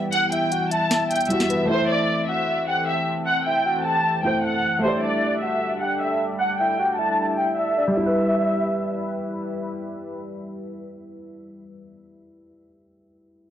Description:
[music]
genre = hip hop, trap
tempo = 153 BPM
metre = 4/4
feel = half-time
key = E minor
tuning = A4 = 440 Hz
[part]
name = soft octave-layered synth lead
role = second line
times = 0.0-9.1 s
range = B4 to G5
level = -28 LUFS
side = left 2 dB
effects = chorus, tremolo, tape echo
[part]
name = dark baby grand piano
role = accompaniment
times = 0.0-13.5 s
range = G3 to D5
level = -28 LUFS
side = right 1 dB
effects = low-pass filter
[part]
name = sweeping resonant pad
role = sustained chords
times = 0.0-11.8 s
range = E3 to B4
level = -30 LUFS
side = equal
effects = chorus, low-pass filter
[part]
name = warm studio violin section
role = melody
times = 0.1-9.1 s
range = C5 to A5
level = -23 LUFS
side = equal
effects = low-pass filter, tape echo
[part]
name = trap drum kit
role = drums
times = 0.1-1.6 s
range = hi-hat, snare drum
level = -26 LUFS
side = equal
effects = none
[sound]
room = studio reverb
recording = dry, gritty hardware recording, cassette tape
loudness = -20 LUFS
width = side -10 dB against mid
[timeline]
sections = 0.0-8.0 A section; 8.0-11.1 B section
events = break 0.0-1.7; filter sweep 0.0-8.0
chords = 0.0 Em; 1.7 Am; 4.8 Dsus4; 8.0 Em

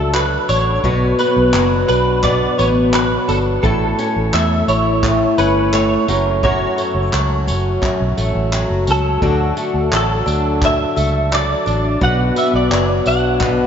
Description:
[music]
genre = acoustic pop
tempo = 86 BPM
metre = 4/4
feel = straight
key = D major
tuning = A4 = 440 Hz
[part]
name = direct-recorded clean electric guitar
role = melody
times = 0.0-13.7 s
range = A4 to F#5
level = -19 LUFS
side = right 1 dB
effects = ensemble chorus
[part]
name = fingerpicked twelve-string acoustic guitar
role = accompaniment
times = 0.0-13.7 s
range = F#2 to A4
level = -18 LUFS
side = left 2 dB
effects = none
[part]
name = vintage muted fingered electric bass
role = bass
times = 0.0-13.6 s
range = F#1 to E2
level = -19 LUFS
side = equal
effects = none
[part]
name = unplugged drum kit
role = drums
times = 0.1-13.6 s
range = handclaps, kick drum, tambourine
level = -24 LUFS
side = right 1 dB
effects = none
[sound]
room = wet cathedral reverb, RT60 5.3 s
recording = in a vast, echoing space, nothing above 7.6 kHz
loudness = -14 LUFS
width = side -8 dB against mid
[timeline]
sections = 0.0-13.7 A section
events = none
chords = 0.0 D; 0.8 Bm; 3.6 A; 6.1 F#m; 9.2 D; 12.0 Bm

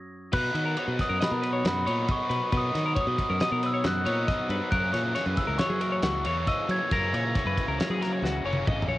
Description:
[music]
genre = math rock and midwest emo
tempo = 137 BPM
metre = 5/4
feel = straight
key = B major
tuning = A4 = 441 Hz
[part]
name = glockenspiel with rubber mallets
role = melody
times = 0.3-8.6 s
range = B5 to A#6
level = -30 LUFS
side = equal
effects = cassette tape
[part]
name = twelve-string electric guitar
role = arpeggios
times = 0.3-9.0 s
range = F#4 to D#5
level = -32 LUFS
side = left 4 dB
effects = none
[part]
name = crunchy overdriven guitar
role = riff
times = 0.3-9.0 s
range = F#2 to D#4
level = -33 LUFS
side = right 1 dB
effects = none
[part]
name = modern bright fingered electric bass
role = bass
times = 0.3-9.0 s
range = F#1 to F#3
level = -30 LUFS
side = equal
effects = none
[part]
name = loose indie drum kit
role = drums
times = 0.3-8.9 s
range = crash cymbal, kick drum, ride cymbal, snare drum, toms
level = -31 LUFS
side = equal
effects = cassette tape
[sound]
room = light reverb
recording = home recording on cassette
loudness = -24 LUFS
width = side -16 dB against mid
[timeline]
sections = 0.3-9.0 A section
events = stop 0.0-0.3; drum fill 8.2-9.0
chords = 0.3 Bmaj7; 4.7 F#7

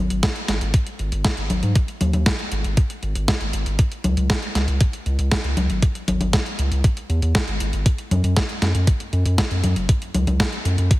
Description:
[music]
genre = italo disco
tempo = 118 BPM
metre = 4/4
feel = straight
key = C# minor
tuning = A4 = 435 Hz
[part]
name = round analog bass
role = bass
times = 0.0-10.9 s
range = F#1 to G#2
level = -21 LUFS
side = equal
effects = tube saturation
[part]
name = clean 12-bit digital drum machine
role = drums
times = 0.1-11.0 s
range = congas, hi-hat, snare drum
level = -24 LUFS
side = left 1 dB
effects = overdrive
[part]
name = electronic kick drum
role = drums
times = 0.2-11.0 s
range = none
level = -18 LUFS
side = equal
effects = overdrive
[sound]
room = light reverb, digital ambience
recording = heavily compressed radio sound, multiband compression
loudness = -18 LUFS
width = side -18 dB against mid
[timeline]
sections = 0.0-11.0 A section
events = none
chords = none

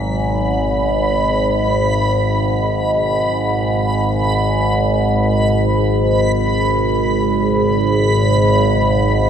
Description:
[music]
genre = dark ambient drone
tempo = free time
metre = none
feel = none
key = G# minor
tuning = A4 = 441 Hz
[part]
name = sweeping resonant pad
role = sustained chords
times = 0.0-9.3 s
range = G#2 to D#4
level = -28 LUFS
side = right 1 dB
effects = none
[part]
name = overtone-sweeping drone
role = drone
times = 0.0-9.3 s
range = G#1 to G#2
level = -15 LUFS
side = equal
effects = chorus, built-in reverb
[part]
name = backwards swelling texture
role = texture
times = 0.0-9.3 s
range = B5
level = -22 LUFS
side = right 1 dB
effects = built-in reverb
[sound]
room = wet cathedral reverb, RT60 5.8 s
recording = cassette tape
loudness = -14 LUFS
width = side -8 dB against mid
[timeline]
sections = 0.0-9.3 A section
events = none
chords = 0.0 G#m

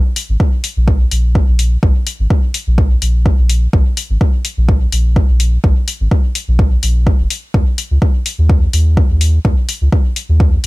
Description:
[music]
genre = dub techno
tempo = 126 BPM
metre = 4/4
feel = swing 54% on 16ths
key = Bb minor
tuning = A4 = 444 Hz
[part]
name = electronic hi-hat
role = drums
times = 0.2-10.7 s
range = none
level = -20 LUFS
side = left 5 dB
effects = overdrive
[part]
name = soft dub sub bass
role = bass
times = 0.3-10.7 s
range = F1 to Eb2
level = -12 LUFS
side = equal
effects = sidechain pumping
[part]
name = electronic kick drum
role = drums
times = 0.4-10.5 s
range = none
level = -12 LUFS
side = equal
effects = overdrive
[sound]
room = little or no reverb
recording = none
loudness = -11 LUFS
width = side -21 dB against mid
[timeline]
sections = 0.0-10.7 A section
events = none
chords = none

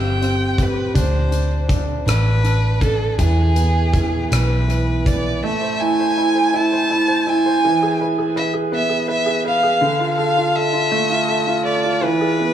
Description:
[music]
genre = six-eight pop ballad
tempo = 54 BPM (dotted quarters)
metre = 6/8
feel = straight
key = A harmonic minor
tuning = A4 = 436 Hz
[part]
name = warm violin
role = melody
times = 0.0-12.5 s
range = G#4 to A5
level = -20 LUFS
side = equal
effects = tape echo
[part]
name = clear grand piano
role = accompaniment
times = 0.0-12.5 s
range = D3 to C5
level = -20 LUFS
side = right 1 dB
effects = tape echo
[part]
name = vintage muted fingered electric bass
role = bass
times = 0.0-5.4 s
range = G1 to E2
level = -18 LUFS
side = equal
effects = none
[part]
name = huge arena drum kit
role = drums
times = 0.2-5.2 s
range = hi-hat, kick drum, rim click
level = -23 LUFS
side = equal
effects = none
[sound]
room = light reverb, studio ambience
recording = echo-heavy mix, small room ambience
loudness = -16 LUFS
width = side -10 dB against mid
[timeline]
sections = 0.0-5.4 A section; 5.4-12.5 B section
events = none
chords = 0.0 C5; 1.0 D5; 3.2 E; 5.4 Am; 7.6 E; 9.8 Dm; 12.0 E

